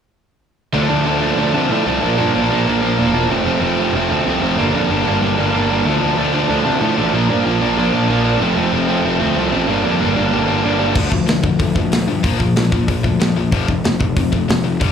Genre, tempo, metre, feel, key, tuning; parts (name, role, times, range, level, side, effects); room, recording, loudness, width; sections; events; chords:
punk rock; 188 BPM; 4/4; straight; D minor; A4 = 440 Hz
crunchy overdriven guitar; riff; 0.7-11.0 s; F2 to D4; -17 LUFS; right 8 dB; slapback echo
tight distorted guitar; riff; 0.7-14.9 s; F2 to D4; -19 LUFS; left 11 dB; distortion, slapback echo
fuzz picked electric bass; bass; 0.7-14.9 s; E1 to C3; -20 LUFS; equal; overdrive
tight metal drum kit; drums; 11.0-14.9 s; crash cymbal, hi-hat, kick drum, snare drum; -19 LUFS; equal
light reverb; live gig heard through the venue's PA, club reverb; -14 LUFS; side -8 dB against mid
0.7-11.0 A section; 11.0-14.9 B section
0.7 Dm; 2.0 Bb; 3.3 F; 4.6 Gm; 5.9 Dm; 7.1 Bb; 8.4 F; 9.7 Gm; 11.0 Dm; 12.2 Bb5; 13.5 F5